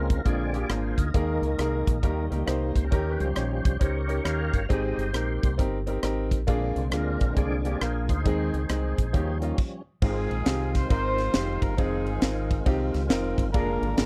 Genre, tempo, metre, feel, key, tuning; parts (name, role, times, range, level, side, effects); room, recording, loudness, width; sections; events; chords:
uptempo gospel; 135 BPM; 4/4; swing 63% on 8ths; Ab major; A4 = 440 Hz
clear upright piano; accompaniment; 0.0-14.1 s; Ab2 to Db5; -32 LUFS; equal
tonewheel organ; sustained chords; 0.0-14.1 s; Db3 to F5; -36 LUFS; equal; slow rotary speaker, overdrive, chorus vibrato
deep dub fingered electric bass; bass; 0.0-14.1 s; F1 to Eb2; -31 LUFS; equal
crisp fusion drum kit; drums; 0.1-14.1 s; crash cymbal, hi-hat, kick drum, ride cymbal, rim click, snare drum; -27 LUFS; equal
warm horn section; melody; 10.0-14.1 s; C4 to C5; -34 LUFS; equal
little or no reverb; dry, close 1970s-style studio recording; -26 LUFS; mono
0.0-10.0 A section; 10.0-14.1 B section
tonewheel organ solo 0.0-10.0; stop 9.6-10.0
0.3 Bb7; 1.1 Ebsus4; 2.0 Eb; 2.9 Eb7; 4.7 Abmaj7; 6.5 Bb7; 8.3 Ab; 9.1 Eb7; 10.0 Ab6; 11.8 Fm7; 13.5 Bb7/F